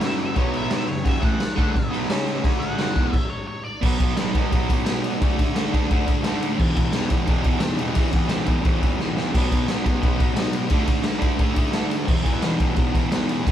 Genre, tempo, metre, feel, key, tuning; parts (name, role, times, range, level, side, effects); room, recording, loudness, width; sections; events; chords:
garage rock duo or trio; 174 BPM; 4/4; straight; A4 = 438 Hz
octave-fuzz lead guitar; melody; 0.0-3.8 s; C#5 to F#5; -31 LUFS; left 1 dB; distortion
fuzz guitar; riff; 0.0-13.5 s; E2 to D4; -23 LUFS; equal; distortion
raw garage drum kit; drums; 0.0-13.5 s; crash cymbal, kick drum, ride cymbal, snare drum; -21 LUFS; equal
light reverb; band playing live in one room; -19 LUFS; side -11 dB against mid
0.0-3.8 A section; 3.8-13.5 B section
lead electric guitar solo 0.0-3.8; stop 3.1-3.8; drum fill 9.0-9.3
0.0 F#5; 0.4 B5; 0.9 F#m; 2.1 C#5; 2.4 D5; 2.8 F#5; 3.5 N.C.; 3.8 B5; 5.2 D5; 6.6 E5; 9.3 B5; 10.7 D5; 12.1 E5